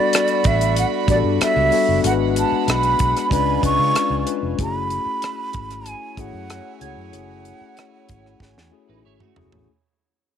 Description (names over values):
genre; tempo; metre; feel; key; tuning
lush 1970s-style soul; 94 BPM; 4/4; straight; F# minor; A4 = 439 Hz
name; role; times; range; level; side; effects
breathy jazz flute; melody; 0.0-8.7 s; D5 to C#6; -21 LUFS; right 2 dB; none
warm studio violin section; second line; 0.0-9.6 s; G#3 to B5; -28 LUFS; right 12 dB; none
tine electric piano; accompaniment; 0.0-9.7 s; G3 to B4; -24 LUFS; left 12 dB; none
celesta; texture; 0.0-1.3, 6.8-8.6 s; G#6 to A6; -46 LUFS; right 7 dB; none
tight funk drum kit; drums; 0.1-9.7 s; hi-hat, kick drum, rim click, snare drum, toms; -22 LUFS; right 1 dB; none
vintage muted fingered electric bass; bass; 0.5-9.7 s; E#1 to C#3; -25 LUFS; right 2 dB; none
electric guitar at the edge of break-up; riff; 8.9-9.7 s; A3 to C#5; -57 LUFS; right 2 dB; none
room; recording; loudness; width
moderate spring reverb, RT60 2.8 s; 1960s-style stereo with parts hard left and right; -17 LUFS; side -8 dB against mid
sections
0.0-9.7 A section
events
fade-out 0.0-9.7; drum fill 8.4-9.7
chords
0.0 Gmaj9; 2.0 G#m7b5; 3.3 C#7b9; 4.6 F#m9